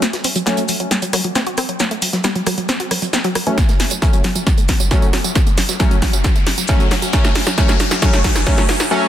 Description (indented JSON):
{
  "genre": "driving peak-time techno",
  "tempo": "135 BPM",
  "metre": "4/4",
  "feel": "straight",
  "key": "F# minor",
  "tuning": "A4 = 442 Hz",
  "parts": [
    { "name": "wide unison pluck", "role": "riff", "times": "0.0-8.8 s", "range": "E3 to F#4", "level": "-22 LUFS", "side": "equal", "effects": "sidechain pumping, tape echo" },
    { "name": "deep reggae drum kit", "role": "drums", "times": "0.0-8.8 s", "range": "hi-hat, shaker, snare drum", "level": "-28 LUFS", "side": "left 2 dB", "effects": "sidechain pumping on hats, high-pass filter on hats, studio reverb, high-pass filter on snare, sidechain pumping on perc, high-pass filter on perc, high-pass filter on room" },
    { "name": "techno drum kit", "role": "drums", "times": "0.0-8.9 s", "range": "hi-hat, rim click, snare drum, tambourine", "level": "-20 LUFS", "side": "right 1 dB", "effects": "overdrive, studio reverb" },
    { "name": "sync-sweep polysynth", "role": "stabs", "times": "0.5-0.6, 3.5-9.1 s", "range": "F#3 to C#4", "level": "-22 LUFS", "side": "equal", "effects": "chorus, sidechain pumping, digital delay" },
    { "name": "electronic kick drum", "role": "drums", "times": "3.6-8.6 s", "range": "none", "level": "-15 LUFS", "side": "equal", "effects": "overdrive, studio reverb" },
    { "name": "riser", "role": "sound effects", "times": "4.8-8.9 s", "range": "none", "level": "-26 LUFS", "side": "left 4 dB", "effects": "none" }
  ],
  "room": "light reverb, small room ambience",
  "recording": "dense, heavily limited modern master",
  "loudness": "-14 LUFS",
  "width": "side -11 dB against mid",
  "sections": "0.0-9.1 A section",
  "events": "build-up 0.0-9.1; drum fill 0.0-8.9; filter sweep on analog polysynth 0.0-9.1; riser 4.8-8.9",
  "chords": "0.0 F#m",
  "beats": "| 0.02 0.47 0.91 1.35 | 1.80 2.24 2.69 3.13 | 3.58 4.02 4.47 4.91 | 5.36 5.80 6.24 6.69 | 7.13 7.58 8.02 8.47 | 8.91"
}